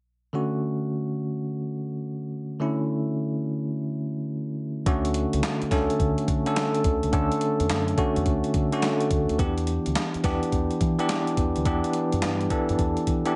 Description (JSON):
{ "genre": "R&B, new jack swing", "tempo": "106 BPM", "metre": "4/4", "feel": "swing 65% on 16ths", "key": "D major", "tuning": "A4 = 440 Hz", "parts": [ { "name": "bell-like tine electric piano", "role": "accompaniment", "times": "0.3-13.4 s", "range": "D3 to A4", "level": "-27 LUFS", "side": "equal", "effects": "none" }, { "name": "deep dub fingered electric bass", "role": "bass", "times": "4.9-13.2 s", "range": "C#2 to E3", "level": "-31 LUFS", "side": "equal", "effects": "none" }, { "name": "boom bap sampler-style drum kit", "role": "drums", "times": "4.9-13.3 s", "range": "handclaps, hi-hat, kick drum, snare drum", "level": "-30 LUFS", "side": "equal", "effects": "gated reverb" } ], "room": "light reverb", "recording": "nothing above 10.6 kHz", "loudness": "-26 LUFS", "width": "mono", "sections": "0.3-4.9 A section; 4.9-13.4 B section", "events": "none", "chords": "0.3 Dmaj7; 9.4 Em7" }